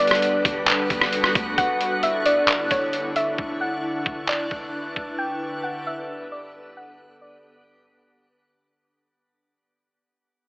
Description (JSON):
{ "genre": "hip hop, atmospheric cloud-rap", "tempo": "133 BPM", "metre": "4/4", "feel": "half-time", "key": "unclear", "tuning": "A4 = 439 Hz", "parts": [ { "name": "soft round pluck", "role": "melody", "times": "0.0-8.8 s", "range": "C#5 to G5", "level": "-25 LUFS", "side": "equal", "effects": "chorus, phaser, low-pass filter, tape echo" }, { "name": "ethereal airy pad", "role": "sustained chords", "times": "0.0-8.8 s", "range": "D2 to B4", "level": "-29 LUFS", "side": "equal", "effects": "ensemble chorus, built-in reverb, sidechain pumping, low-pass filter" }, { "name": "warm 808-style bass", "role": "bass", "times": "0.0-1.6 s", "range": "G1 to D2", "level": "-37 LUFS", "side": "equal", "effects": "none" }, { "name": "trip hop sampler-style drum kit", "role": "drums", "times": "0.0-5.1 s", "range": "handclaps, hi-hat, kick drum, rim click", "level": "-23 LUFS", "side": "equal", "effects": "overdrive" }, { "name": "backwards swelling texture", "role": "texture", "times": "0.0-8.8 s", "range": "B3 to F#6", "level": "-30 LUFS", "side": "equal", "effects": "built-in reverb" } ], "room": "wet shimmer reverb, RT60 4.2 s", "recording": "AM radio sound", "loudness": "-20 LUFS", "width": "side -27 dB against mid", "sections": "0.0-1.6 A section; 1.6-8.8 B section", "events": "fade-out 1.6-8.8; filter sweep 1.6-8.8", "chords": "0.0 Gmaj7; 1.6 Dmaj7; 5.2 Gmaj7" }